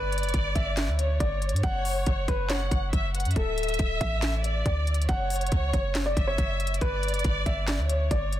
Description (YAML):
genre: hip hop, trap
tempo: 139 BPM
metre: 4/4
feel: half-time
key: F# phrygian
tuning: A4 = 440 Hz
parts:
  - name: dark baby grand piano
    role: melody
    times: 0.0-8.4 s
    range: A4 to F#5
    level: -32 LUFS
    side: left 1 dB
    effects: tape echo
  - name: warm studio violin section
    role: second line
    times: 0.0-8.4 s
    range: C#5 to F#5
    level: -32 LUFS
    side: equal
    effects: tape echo
  - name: warm 808-style bass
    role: bass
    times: 0.0-8.4 s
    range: D1 to G2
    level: -28 LUFS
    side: equal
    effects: none
  - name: trap drum kit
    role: drums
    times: 0.1-8.4 s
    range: handclaps, hi-hat, kick drum, snare drum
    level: -29 LUFS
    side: equal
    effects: none
room: little or no reverb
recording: dense, heavily limited modern master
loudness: -24 LUFS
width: side -12 dB against mid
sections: 0.0-8.4 A section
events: none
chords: 0.0 G; 1.6 F#5; 3.4 D5; 5.1 F#5; 6.8 G